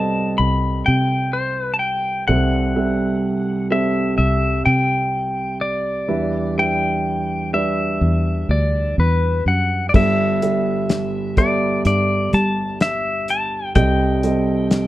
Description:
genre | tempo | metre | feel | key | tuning
acoustic folk-pop ballad | 63 BPM | 4/4 | straight | G major | A4 = 440 Hz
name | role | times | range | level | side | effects
pedal steel guitar | melody | 0.0-14.9 s | B4 to B5 | -22 LUFS | left 2 dB | plate reverb
warm concert grand piano | accompaniment | 0.0-14.9 s | G1 to E5 | -21 LUFS | right 2 dB | none
fingered electric bass | bass | 0.0-14.9 s | C2 to G3 | -20 LUFS | equal | none
cloth-damped thuddy drum kit | drums | 9.9-14.9 s | crash cymbal, hi-hat, kick drum, snare drum | -18 LUFS | left 1 dB | none
room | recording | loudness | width
light reverb | none | -17 LUFS | side -15 dB against mid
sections
0.0-9.9 A section; 9.9-14.9 A section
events
none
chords
0.0 Cm6; 2.3 Am7/C; 6.1 Em7; 9.9 G69; 13.8 Cm6

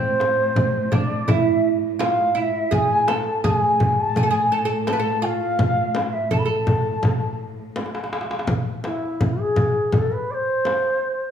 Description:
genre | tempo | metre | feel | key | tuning
Arabic maqam ensemble | 83 BPM | 4/4 | straight | A maqam nahawand | A4 = 440 Hz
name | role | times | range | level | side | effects
bansuri | melody | 0.0-11.3 s | E4 to B5 | -22 LUFS | equal | none
oud | second line | 0.0-7.4 s | C4 to B4 | -24 LUFS | right 5 dB | none
rich studio cello section | drone | 0.0-8.6 s | A2 | -30 LUFS | left 2 dB | none
darbuka | percussion | 0.2-10.9 s | none | -25 LUFS | equal | none
frame drum | percussion | 0.2-10.8 s | none | -26 LUFS | left 1 dB | none
room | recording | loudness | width
wet recital hall reverb, RT60 1.5 s | small room reverb | -18 LUFS | side -8 dB against mid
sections
0.0-8.5 A section; 8.5-11.3 B section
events
drum fill 7.8-8.5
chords
none

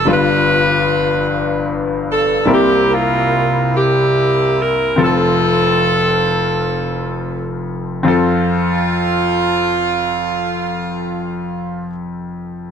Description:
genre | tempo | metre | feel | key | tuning
gospel | 34-50 BPM (dotted quarters) | 6/8 | straight | F major | A4 = 440 Hz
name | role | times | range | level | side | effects
clear saxophone section | melody | 0.0-11.9 s | Bb3 to B4 | -16 LUFS | right 1 dB | none
clear grand piano | accompaniment | 0.0-12.7 s | F1 to E5 | -17 LUFS | left 2 dB | none
room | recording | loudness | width
moderate echo chamber reverb, RT60 1.7 s | none | -14 LUFS | side -7 dB against mid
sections
0.0-8.1 A section; 8.1-11.6 B section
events
slowing down 2.5-8.1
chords
0.1 G7; 2.5 C7; 5.0 F

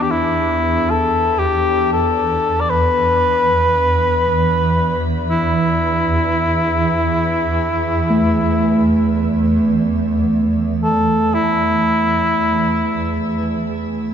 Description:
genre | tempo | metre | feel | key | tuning
world meditative, free-time meditation music | free time | none | none | unclear | A4 = 440 Hz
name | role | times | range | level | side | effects
mellow cor anglais | melody | 0.0-13.1 s | E4 to D5 | -17 LUFS | left 1 dB | shimmer reverb, ping-pong delay
granular cloud pad | drone | 0.0-14.1 s | E2 | -21 LUFS | right 1 dB | built-in reverb
quartz singing bowl | texture | 0.0-13.9 s | E3 to D4 | -20 LUFS | right 2 dB | none
room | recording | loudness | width
wet church reverb, RT60 2.7 s | nothing above 7.6 kHz | -14 LUFS | side -8 dB against mid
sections
0.0-13.4 A section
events
none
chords
none

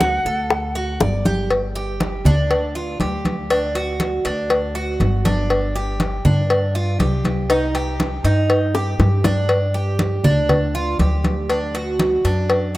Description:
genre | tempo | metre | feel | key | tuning
latin, Cuban son and guajira | 120 BPM | 4/4 | straight | unclear | A4 = 440 Hz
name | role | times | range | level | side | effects
silver concert flute | melody | 0.0-1.0 s | F#5 | -22 LUFS | right 1 dB | none
Cuban tres | arpeggios | 0.0-12.8 s | D4 to D5 | -23 LUFS | right 2 dB | none
upright bass | bass | 0.0-12.8 s | G1 to G2 | -22 LUFS | equal | none
bongos and cowbell | percussion | 0.0-12.7 s | none | -22 LUFS | left 2 dB | none
congas | percussion | 0.0-12.8 s | none | -21 LUFS | equal | none
room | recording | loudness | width
moderate plate reverb, RT60 2.8 s | rough home demo mix | -17 LUFS | side -17 dB against mid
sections
0.0-1.5 A section; 1.5-12.8 B section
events
drum fill 1.0-1.5, 8.7-9.5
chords
0.0 D; 1.5 G5; 3.5 D; 5.5 G5; 7.5 Cm; 9.5 G5; 11.5 D

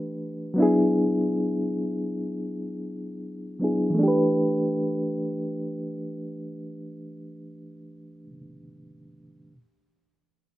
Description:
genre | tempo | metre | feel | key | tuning
R&B | free time | none | none | unclear | A4 = 440 Hz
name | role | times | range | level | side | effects
reed electric piano | accompaniment | 0.0-9.5 s | E3 to B4 | -24 LUFS | equal | fast tremolo, low-pass filter
room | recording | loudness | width
light reverb, studio ambience | rough home demo mix | -23 LUFS | side -16 dB against mid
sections
0.0-4.0 A section; 4.0-7.0 B section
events
filter sweep on reed electric piano 0.0-4.0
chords
0.0 Gadd9; 0.6 E7; 4.0 A9sus4

